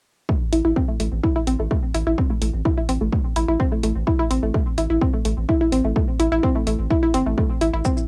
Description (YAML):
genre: melodic techno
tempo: 127 BPM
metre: 4/4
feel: straight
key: A minor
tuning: A4 = 440 Hz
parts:
  - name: analog pluck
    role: arpeggios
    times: 0.3-7.9 s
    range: A3 to E4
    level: -24 LUFS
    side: equal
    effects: chorus, sidechain pumping, cassette tape, analog delay
  - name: electronic kick drum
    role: drums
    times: 0.3-7.9 s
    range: none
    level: -24 LUFS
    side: equal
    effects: cassette tape
  - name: round analog bass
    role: bass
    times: 0.5-7.8 s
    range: G1 to A1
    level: -27 LUFS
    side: equal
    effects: sidechain pumping
  - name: electronic hi-hat and shaker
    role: drums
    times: 0.5-8.1 s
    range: none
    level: -34 LUFS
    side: equal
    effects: sidechain pumping on hats, cassette tape, sidechain pumping on perc
room: light reverb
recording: home recording on cassette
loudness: -21 LUFS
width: mono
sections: 0.3-8.1 A section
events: filter sweep on synth arpeggio sound 0.3-8.1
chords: 0.3 A5